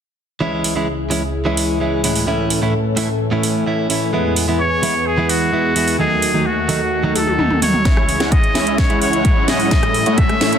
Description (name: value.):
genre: EDM, festival progressive house.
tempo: 129 BPM.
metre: 4/4.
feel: straight.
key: C# minor.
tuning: A4 = 440 Hz.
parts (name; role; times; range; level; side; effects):
direct-recorded clean electric guitar; accompaniment; 0.4-10.5 s; A2 to E4; -20 LUFS; right 1 dB; sidechain pumping, tape echo.
lush unison pad; sustained chords; 0.4-10.6 s; C#2 to A4; -22 LUFS; equal; chorus, sidechain pumping.
house drum kit; drums; 0.6-10.6 s; hi-hat, rim click, snare drum, toms; -21 LUFS; right 1 dB; none.
trumpet with straight mute; melody; 4.6-10.6 s; F#4 to E5; -19 LUFS; left 1 dB; tape echo.
supersaw chords; riff; 7.9-10.6 s; G#3 to F#5; -20 LUFS; equal; sidechain pumping, low-pass filter.
electronic kick drum; drums; 7.9-10.3 s; none; -15 LUFS; equal; none.
riser; sound effects; 9.3-10.6 s; none; -25 LUFS; left 3 dB; none.
room: moderate recital hall reverb, RT60 1.4 s.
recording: dense, heavily limited modern master.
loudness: -14 LUFS.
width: side -8 dB against mid.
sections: 0.4-7.9 A section; 7.9-10.6 B section.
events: filter sweep on analog synth pad 0.4-7.9; drum fill 7.2-7.9, 7.9-10.6; build-up 7.9-10.6; riser 9.3-10.6.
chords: 0.4 C#m; 2.3 A; 4.1 E; 6.0 D#dim; 7.9 C#m; 9.7 A.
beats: | 0.41 0.88 1.34 1.81 | 2.27 2.74 3.20 3.67 | 4.13 4.60 5.06 5.53 | 5.99 6.46 6.92 7.39 | 7.85 8.32 8.78 9.25 | 9.71 10.18.